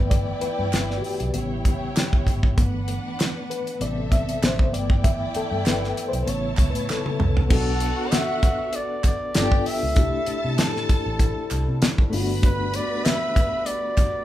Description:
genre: lush 1970s-style soul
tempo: 98 BPM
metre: 4/4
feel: swing 54% on 16ths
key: G major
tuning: A4 = 440 Hz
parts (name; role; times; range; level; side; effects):
- warm studio string section; second line; 0.0-14.2 s; C4 to B5; -32 LUFS; equal; none
- mellow reed electric piano; accompaniment; 0.0-14.2 s; C3 to E5; -28 LUFS; left 2 dB; fast tremolo
- vintage muted fingered electric bass; bass; 0.0-12.8 s; G1 to C3; -27 LUFS; equal; none
- damped 70s drum kit; drums; 0.1-14.1 s; crash cymbal, hi-hat, kick drum, snare drum, toms; -21 LUFS; equal; none
- group handclap; percussion; 0.7-14.1 s; none; -38 LUFS; right 4 dB; none
- breathy flugelhorn; melody; 7.5-14.2 s; A4 to E5; -27 LUFS; equal; none
- dark French horn section; sustained chords; 7.5-14.2 s; D3 to F#4; -37 LUFS; equal; none
room: light reverb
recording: band playing live in one room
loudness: -20 LUFS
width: side -13 dB against mid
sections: 0.0-7.5 A section; 7.5-14.2 B section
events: reed electric piano solo 0.0-7.5; drum fill 6.9-7.5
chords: 0.0 G69; 1.3 A7; 2.6 G69; 3.8 Am7; 4.7 G69; 6.3 A7; 7.5 Bm7; 9.3 G7; 10.0 C69; 12.1 Gmaj7

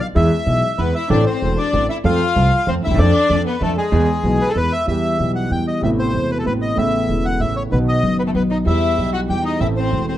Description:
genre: tango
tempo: 190 BPM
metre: 3/4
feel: rubato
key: E harmonic minor from 4.9 s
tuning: A4 = 440 Hz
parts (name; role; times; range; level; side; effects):
- bandoneon; melody; 0.0-10.2 s; G#4 to G5; -21 LUFS; left 1 dB; plate reverb
- warm concert grand piano; accompaniment; 0.1-10.2 s; E1 to A4; -19 LUFS; right 1 dB; none
- upright bass; bass; 0.2-10.2 s; E1 to F2; -21 LUFS; right 1 dB; none
- warm violin; second line; 0.8-4.5, 8.2-10.2 s; G#3 to G4; -24 LUFS; left 6 dB; none
room: moderate studio reverb, RT60 0.8 s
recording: dark, warm production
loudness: -15 LUFS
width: side -12 dB against mid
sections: 0.0-4.9 A section; 4.9-10.2 B section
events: none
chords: 0.2 E; 1.1 Am; 2.0 F; 3.0 Dm/F; 3.9 E; 4.9 Em; 5.8 Amadd9; 6.8 Aadd9; 7.7 B; 8.7 Em; 9.6 Am

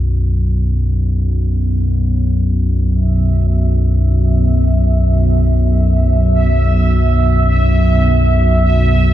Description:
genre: dark ambient drone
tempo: free time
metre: none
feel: none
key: unclear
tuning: A4 = 437 Hz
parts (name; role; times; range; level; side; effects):
- deep rumbling drone; drone; 0.0-9.1 s; B1 to F#2; -12 LUFS; equal; built-in reverb
- bubbling stepped-filter texture; texture; 3.1-9.1 s; E5; -21 LUFS; right 3 dB; chorus, built-in reverb
room: wet cathedral reverb, RT60 5.7 s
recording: in a vast, echoing space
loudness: -12 LUFS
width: side -12 dB against mid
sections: 0.0-9.1 A section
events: none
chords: 0.0 B5

